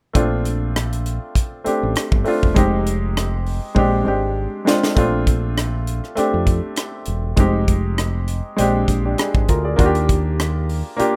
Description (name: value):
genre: lush 1970s-style soul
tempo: 100 BPM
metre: 4/4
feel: swing 54% on 16ths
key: Bb major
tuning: A4 = 440 Hz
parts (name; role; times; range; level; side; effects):
- clear concert grand piano; accompaniment; 0.1-11.2 s; Ab3 to D5; -23 LUFS; equal; none
- tight funk drum kit; drums; 0.1-11.1 s; hi-hat, kick drum, rim click, snare drum; -21 LUFS; equal; none
- fingered electric bass; bass; 0.2-11.0 s; E1 to F2; -24 LUFS; equal; none
room: studio reverb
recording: rough home demo mix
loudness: -19 LUFS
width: mono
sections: 0.1-5.0 A section; 5.0-11.2 B section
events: drum fill 3.8-5.0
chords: 0.1 Bbmaj7; 2.6 Fm7; 3.8 Bb13; 5.0 Bbmaj7; 7.4 Fm7; 8.6 Bb13; 9.8 Ebmaj9